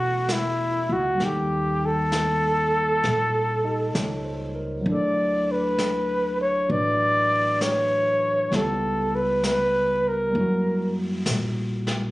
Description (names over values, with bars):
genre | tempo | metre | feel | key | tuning
jazz ballad | 66 BPM | 4/4 | swing 66% on 8ths | unclear | A4 = 440 Hz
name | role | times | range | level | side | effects
breathy flugelhorn | melody | 0.0-11.0 s | E4 to D5 | -22 LUFS | equal | none
barky tine electric piano | accompaniment | 0.0-12.1 s | F#3 to D#5 | -29 LUFS | equal | none
upright bass | bass | 0.0-12.1 s | E1 to F#2 | -29 LUFS | equal | none
vintage brush drum kit | drums | 0.3-12.1 s | brushed snare drum, hi-hat, snare drum | -32 LUFS | left 1 dB | none
room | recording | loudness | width
little or no reverb | recorded on a phone in the room, studio reverb, compression | -21 LUFS | side -18 dB against mid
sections
0.0-12.1 A section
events
none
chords
0.0 A; 1.2 D#7#11; 4.9 Dmaj9; 8.5 C#m7b5; 10.3 F#7b9